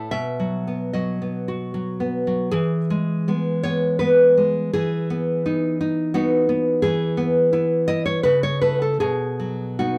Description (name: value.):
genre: romantic piece for solo classical guitar.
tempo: 72-88 BPM.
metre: 3/4.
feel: rubato.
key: E major.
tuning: A4 = 440 Hz.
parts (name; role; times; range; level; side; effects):
nylon-string guitar; solo; 0.0-10.0 s; B2 to E5; -21 LUFS; equal; none.
room: moderate studio reverb, RT60 0.6 s.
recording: band playing live in one room.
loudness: -21 LUFS.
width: mono.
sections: 0.0-2.5 A section; 2.5-10.0 B section.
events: none.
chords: 0.1 B; 2.5 E; 4.7 B/E; 6.8 E; 8.2 A/C#; 9.0 B.